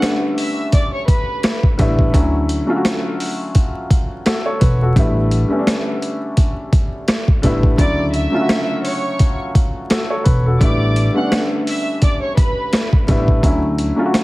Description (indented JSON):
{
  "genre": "hip hop, boom-bap hip-hop",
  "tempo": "85 BPM",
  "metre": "4/4",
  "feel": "swing 57% on 16ths",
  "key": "D major",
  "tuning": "A4 = 439 Hz",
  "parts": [
    { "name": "warm baby grand piano", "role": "accompaniment", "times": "0.0-14.2 s", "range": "C#3 to C#5", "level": "-20 LUFS", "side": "left 1 dB", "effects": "cassette tape, high-pass filter, low-pass filter" },
    { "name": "boom bap sampler-style drum kit", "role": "drums", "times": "0.0-14.2 s", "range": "hi-hat, kick drum, rim click, snare drum", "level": "-16 LUFS", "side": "equal", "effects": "none" },
    { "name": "warm studio violin section", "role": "melody", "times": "0.4-1.6, 7.8-12.9 s", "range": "B4 to F#6", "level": "-24 LUFS", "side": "right 1 dB", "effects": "high-pass filter, low-pass filter, ping-pong delay" },
    { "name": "upright bass", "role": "bass", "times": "1.8-13.9 s", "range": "E1 to D2", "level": "-17 LUFS", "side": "equal", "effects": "none" }
  ],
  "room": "little or no reverb",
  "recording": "heavily compressed radio sound, vinyl crackle",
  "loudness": "-14 LUFS",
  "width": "side -20 dB against mid",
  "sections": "0.0-14.2 A section",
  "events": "none",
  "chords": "0.0 A9sus4; 2.1 Dmaj9; 5.0 A9sus4; 7.8 Dmaj9; 10.6 A9sus4; 13.4 Dmaj9",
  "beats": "0.02 0.73 1.43 | 2.14 2.84 3.55 4.25 | 4.96 5.67 6.37 7.08 | 7.79 8.49 9.20 9.90 | 10.61 11.31 12.02 12.73 | 13.43 14.14"
}